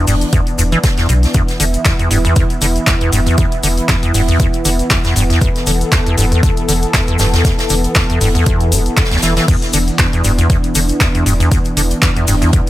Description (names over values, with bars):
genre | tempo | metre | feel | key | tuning
acid house | 118 BPM | 4/4 | swing 55% on 16ths | unclear | A4 = 440 Hz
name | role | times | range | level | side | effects
warm analog pad | sustained chords | 0.0-12.7 s | E3 to A4 | -19 LUFS | equal | chorus, sidechain pumping
acid bass, square | riff | 0.0-12.6 s | D2 to E3 | -16 LUFS | equal | wide subtle chorus, sidechain pumping, digital delay
warm sub bass | bass | 0.1-12.4 s | E1 to B1 | -16 LUFS | equal | sidechain pumping
natural country drum kit | drums | 0.1-12.7 s | hi-hat, snare drum | -25 LUFS | right 1 dB | high-pass filter on hats, high-pass filter on snare, high-pass filter on room
punchy analog drum machine | drums | 0.1-12.7 s | crash cymbal, handclaps, hi-hat | -20 LUFS | left 1 dB | overdrive
cabasa | percussion | 0.1-12.7 s | none | -25 LUFS | left 4 dB | none
electronic kick drum | drums | 0.3-12.6 s | none | -15 LUFS | equal | overdrive
room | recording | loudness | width
small room reverb | none | -11 LUFS | side -15 dB against mid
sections
0.0-12.7 A section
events
none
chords
0.0 E5